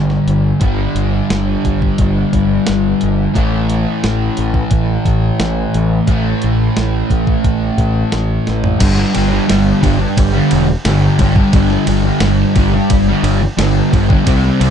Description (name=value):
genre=rock, shoegaze and dream pop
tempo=88 BPM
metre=4/4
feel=straight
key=unclear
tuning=A4 = 440 Hz
part: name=fuzz guitar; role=riff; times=0.0-14.7 s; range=G2 to C4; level=-14 LUFS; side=equal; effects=distortion, lush chorus
part: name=growling fingered electric bass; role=bass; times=0.0-14.7 s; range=E1 to C2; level=-17 LUFS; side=equal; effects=overdrive
part: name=clean 12-bit digital drum machine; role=drums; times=0.1-14.7 s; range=crash cymbal, hi-hat, kick drum, ride cymbal, snare drum, toms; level=-17 LUFS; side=equal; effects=none
room=little or no reverb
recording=dark, warm production, nothing above 10.8 kHz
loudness=-11 LUFS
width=side -8 dB against mid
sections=0.0-8.8 A section; 8.8-14.7 B section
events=drum fill 8.5-8.8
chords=0.0 G5; 3.3 A5; 8.8 G5